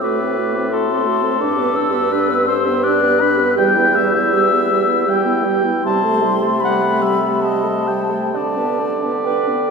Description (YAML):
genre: classical, slow romantic movement for wind quintet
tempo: 63-87 BPM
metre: 3/4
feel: rubato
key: G major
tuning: A4 = 440 Hz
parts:
  - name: mellow hollow concert flute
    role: melody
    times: 0.0-9.7 s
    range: G5 to G6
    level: -20 LUFS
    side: left 5 dB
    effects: none
  - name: warm oboe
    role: second line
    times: 0.0-9.7 s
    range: A4 to B5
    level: -22 LUFS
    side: left 1 dB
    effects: none
  - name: mellow French horn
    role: accompaniment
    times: 0.0-9.7 s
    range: G3 to D4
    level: -23 LUFS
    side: right 1 dB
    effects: none
  - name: mellow clarinet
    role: accompaniment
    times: 0.0-9.7 s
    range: E4 to B4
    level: -22 LUFS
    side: right 5 dB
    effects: none
  - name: mellow bassoon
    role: bass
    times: 0.0-9.7 s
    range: E2 to D3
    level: -21 LUFS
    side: equal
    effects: none
room: wet cathedral reverb, RT60 4.6 s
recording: recorded in a church or concert hall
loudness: -14 LUFS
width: side -5 dB against mid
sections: 0.0-9.7 A section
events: none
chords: 0.0 F#dim/A; 1.4 G; 3.6 Em; 5.8 Am7/C; 8.3 G/D